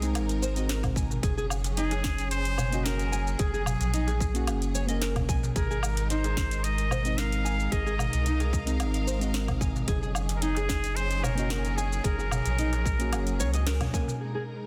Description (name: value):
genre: organic downtempo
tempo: 111 BPM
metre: 4/4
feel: straight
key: unclear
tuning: A4 = 440 Hz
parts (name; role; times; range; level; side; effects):
- trumpet with straight mute; melody; 0.0-13.7 s; Ab4 to F5; -37 LUFS; equal; delay
- deep mellow chord stab; accompaniment; 0.0-14.1 s; Ab3 to Bb4; -38 LUFS; equal; chorus, sidechain pumping, delay
- rich studio string section; sustained chords; 0.0-14.7 s; Gb3 to F5; -41 LUFS; equal; sidechain pumping
- nylon-string guitar; arpeggios; 0.0-14.4 s; Eb4 to Ab5; -38 LUFS; equal; low-pass filter, delay
- warm sub bass; bass; 0.0-13.9 s; Gb1 to Db2; -32 LUFS; equal; sidechain pumping
- afro-pop drum kit; drums; 0.0-14.2 s; hi-hat, shaker, snare drum, woodblock; -38 LUFS; equal; low-pass filter on hats, studio reverb, low-pass filter on perc, low-pass filter on snare
- darbuka; percussion; 0.2-14.2 s; none; -38 LUFS; equal; none
- electronic kick drum; drums; 0.8-14.1 s; none; -32 LUFS; equal; studio reverb
- wind-like tuned noise texture; texture; 6.7-14.2 s; Eb4 to Eb5; -50 LUFS; equal; none
room: light reverb, studio reverb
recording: dense, heavily limited modern master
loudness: -28 LUFS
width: mono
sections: 0.0-14.2 A section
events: band accent 13.7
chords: 0.0 Ab; 1.2 Gb; 5.6 Ab; 9.9 Gb